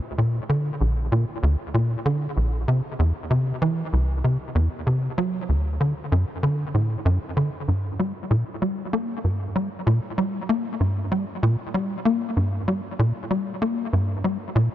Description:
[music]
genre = ambient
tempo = 96 BPM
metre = 4/4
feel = straight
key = G minor from 7.7 s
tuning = A4 = 440 Hz
[part]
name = tight sequencer bass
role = solo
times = 0.2-14.7 s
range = Bb1 to Bb3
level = -21 LUFS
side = equal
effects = ensemble chorus, analog delay
[sound]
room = light reverb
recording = none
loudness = -22 LUFS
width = side -12 dB against mid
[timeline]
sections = 0.0-7.7 A section; 7.7-14.7 B section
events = none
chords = none

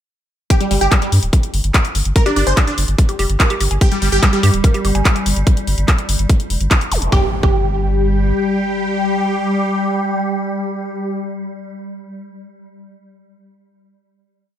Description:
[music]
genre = psychedelic trance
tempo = 145 BPM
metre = 4/4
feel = straight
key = G minor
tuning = A4 = 441 Hz
[part]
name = supersaw stab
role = melody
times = 0.5-4.4, 7.1-11.2 s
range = G3 to C5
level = -20 LUFS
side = equal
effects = phaser, cassette tape, sidechain pumping, tape echo
[part]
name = drum and bass drum kit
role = drums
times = 0.5-7.1 s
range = handclaps, hi-hat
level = -20 LUFS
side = left 1 dB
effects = none
[part]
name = electronic kick drum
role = drums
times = 0.5-7.6 s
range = none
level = -15 LUFS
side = equal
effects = none
[part]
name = round analog bass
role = bass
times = 0.7-8.3 s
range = D1 to G2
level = -16 LUFS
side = equal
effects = none
[part]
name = woody wave-folded pluck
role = riff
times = 2.2-7.5 s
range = G4 to Ab5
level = -23 LUFS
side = moving between left 1 dB and right 5 dB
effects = chorus, auto-pan, sidechain pumping, tape echo
[part]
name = swarming drone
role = sustained chords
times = 4.2-11.1 s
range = G3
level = -22 LUFS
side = equal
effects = built-in reverb, sidechain pumping
[part]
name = zap and impact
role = sound effects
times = 6.9-11.1 s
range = none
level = -25 LUFS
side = equal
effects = none
[sound]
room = little or no reverb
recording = none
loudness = -14 LUFS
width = side -11 dB against mid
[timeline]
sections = 0.5-7.1 groove; 7.1-10.4 final chord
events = none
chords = 0.5 G5; 7.1 N.C.

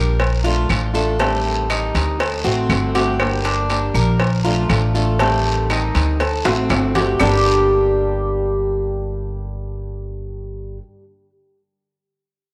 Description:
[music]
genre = latin, Cuban son and guajira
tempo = 120 BPM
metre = 4/4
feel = straight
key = G minor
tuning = A4 = 440 Hz
[part]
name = fingerpicked swing-style acoustic guitar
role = accompaniment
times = 0.0-10.8 s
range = G2 to G4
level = -26 LUFS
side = equal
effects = none
[part]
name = Cuban tres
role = arpeggios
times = 0.0-10.8 s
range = G3 to Bb4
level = -24 LUFS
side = equal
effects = tape echo
[part]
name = upright bass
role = bass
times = 0.0-10.8 s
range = G1 to D2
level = -23 LUFS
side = equal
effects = none
[part]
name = cowbell and bongos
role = percussion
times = 0.2-7.3 s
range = none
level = -26 LUFS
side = equal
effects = none
[part]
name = guiro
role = percussion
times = 0.2-7.3 s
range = none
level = -32 LUFS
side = equal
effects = none
[part]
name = claves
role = percussion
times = 0.7-7.3 s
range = none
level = -31 LUFS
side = equal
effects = none
[sound]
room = moderate echo chamber reverb, RT60 1.8 s, small room ambience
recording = none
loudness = -18 LUFS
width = mono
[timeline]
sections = 0.0-7.2 A section; 7.2-11.2 B section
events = drum fill 6.4-7.2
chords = 0.2 Bbmaj7; 1.2 Am7b5; 2.2 D7; 3.2 Gm; 4.2 Bbmaj7; 5.2 Am7b5; 6.2 D7; 7.2 Gm

